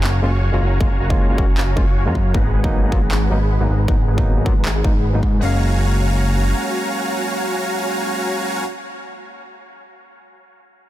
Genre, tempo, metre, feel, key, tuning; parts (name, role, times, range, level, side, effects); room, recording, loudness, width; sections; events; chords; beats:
future bass; 156 BPM; 4/4; swing 54% on 16ths, half-time; F# major; A4 = 440 Hz
dense compressed supersaw; riff; 0.0-8.6 s; G#3 to C#6; -24 LUFS; equal; sidechain pumping, low-pass filter, dub echo
fat analog bass; bass; 0.0-6.5 s; F#1 to G#2; -18 LUFS; equal; sidechain pumping
electronic handclaps; drums; 0.0-4.7 s; -28 LUFS; equal; studio reverb
barky tine electric piano; accompaniment; 0.2-8.7 s; F#3 to E#5; -26 LUFS; left 1 dB; auto-pan, sidechain pumping, dub echo
electronic kick drum; drums; 0.8-5.3 s; -18 LUFS; equal; studio reverb
digital ambience; dense, heavily limited modern master; -16 LUFS; side -14 dB against mid
0.0-5.4 A section; 5.4-8.5 B section
filter sweep on supersaw synth 0.0-5.4
0.0 F#maj7; 2.3 G#m7; 5.4 F#maj7
0.04 0.42 | 0.81 1.19 1.57 1.96 | 2.35 2.73 3.11 3.50 | 3.88 4.27 4.65 5.04 | 5.42 5.81 6.19 6.58 | 6.96 7.34 7.73 8.11